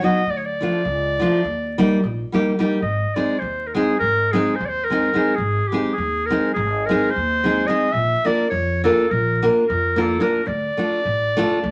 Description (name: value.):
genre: balkan folk, Balkan wedding band.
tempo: 211 BPM (eighths).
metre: 9/8.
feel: straight.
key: unclear.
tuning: A4 = 438 Hz.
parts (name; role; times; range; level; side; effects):
bright clarinet; melody; 0.0-11.7 s; G4 to E5; -24 LUFS; equal; none.
nylon-string guitar; accompaniment; 0.0-11.6 s; F3 to Bb4; -22 LUFS; equal; none.
upright bass; bass; 0.3-11.7 s; G#1 to F2; -29 LUFS; equal; none.
room: moderate studio reverb, RT60 0.8 s.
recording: vinyl crackle.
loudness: -20 LUFS.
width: mono.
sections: 0.0-2.8 A section; 2.8-11.7 B section.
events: none.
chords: 0.3 Dm; 1.4 Eb; 2.8 G#; 7.9 Bb; 10.5 Dm.